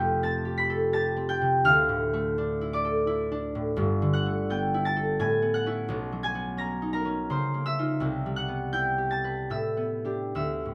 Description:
classical, solo harp piece; 84 BPM; 3/4; rubato; A4 = 441 Hz
concert harp; solo; 0.0-10.7 s; F1 to B6; -27 LUFS; equal
light reverb; -27 LUFS; mono
0.0-10.7 A section
0.0 Fadd9; 1.6 Dmadd9; 3.8 G69; 5.2 A69; 5.9 B69; 7.3 C#69; 8.0 Cmaj7; 9.5 A9sus4
0.21 0.92 | 1.63 2.36 3.07 | 3.78 4.49 5.20 | 5.90 6.60 7.31 | 8.02 8.75 9.51 | 10.36

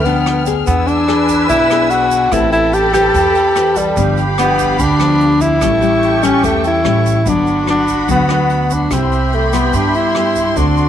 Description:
bossa nova; 146 BPM; 4/4; straight; G major; A4 = 441 Hz
breathy tenor saxophone; melody; 0.0-10.9 s; G3 to G4; -14 LUFS; equal; slapback echo
large flute ensemble; second line; 0.0-10.9 s; E4 to B4; -22 LUFS; right 2 dB
nylon-string guitar; accompaniment; 0.0-10.9 s; G2 to B4; -20 LUFS; left 11 dB
warm studio string section; sustained chords; 0.0-10.9 s; F#4 to F6; -22 LUFS; left 2 dB
upright bass; bass; 0.0-10.9 s; G1 to G2; -19 LUFS; right 2 dB
jazz brush drum kit; drums; 0.1-10.9 s; hi-hat, kick drum, rim click; -26 LUFS; right 1 dB
tube shaker; percussion; 0.1-10.9 s; -31 LUFS; right 22 dB
light reverb, small room reverb; 1960s-style stereo with parts hard left and right; -11 LUFS; side -10 dB against mid
0.0-7.3 A section; 7.3-10.9 B section
0.0 G7; 0.7 E7; 2.3 Am9; 4.0 G7; 5.6 A7; 7.3 Gmaj7; 8.9 Cmaj7
0.26 | 0.67 1.08 1.49 1.91 | 2.32 2.73 3.14 3.55 | 3.97 4.38 4.79 5.20 | 5.61 6.03 6.44 6.85 | 7.26 7.67 8.09 8.50 | 8.91 9.32 9.74 10.15 | 10.56

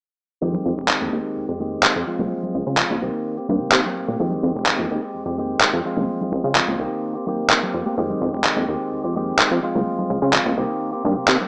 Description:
filtered disco house; 127 BPM; 4/4; straight; F minor; A4 = 441 Hz
electric guitar with an envelope filter; riff; 0.4-11.5 s; Eb3 to G4; -27 LUFS; equal; vintage 12-bit sampler grit, low-pass filter
plucky analog bass; bass; 0.4-11.4 s; F1 to Db3; -26 LUFS; equal; low-pass filter
tambourine and congas; percussion; 0.4-11.5 s; -32 LUFS; equal; low-pass filter on perc
electronic handclaps; drums; 0.9-11.4 s; -21 LUFS; equal
moderate digital room reverb, RT60 1.3 s, digital ambience; small speaker sound; -21 LUFS; mono
0.4-11.5 A section
filter sweep 0.4-11.5
0.4 Fm9; 2.1 Dbmaj7; 3.0 Cm7; 4.2 Fm9; 5.9 Dbmaj7; 6.8 Cm7; 8.0 Fm9; 9.6 Dbmaj7; 10.6 Cm7
| 0.42 0.89 1.36 1.83 | 2.31 2.78 3.25 3.73 | 4.20 4.67 5.14 5.62 | 6.09 6.56 7.03 7.50 | 7.98 8.45 8.92 9.39 | 9.87 10.34 10.81 11.28

